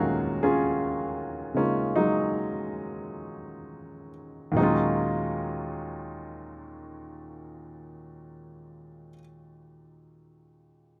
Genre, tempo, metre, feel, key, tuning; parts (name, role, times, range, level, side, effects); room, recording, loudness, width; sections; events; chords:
solo jazz; 43-55 BPM; 4/4; swing 69% on 8ths, rubato; Eb minor; A4 = 440 Hz
warm baby grand piano; solo; 0.0-11.0 s; Eb2 to F5; -30 LUFS; equal
light reverb, small room ambience; rough home demo mix; -28 LUFS; mono
0.0-4.6 A section; 4.6-10.1 B section
slowing down 0.0-4.6
0.0 Ebm11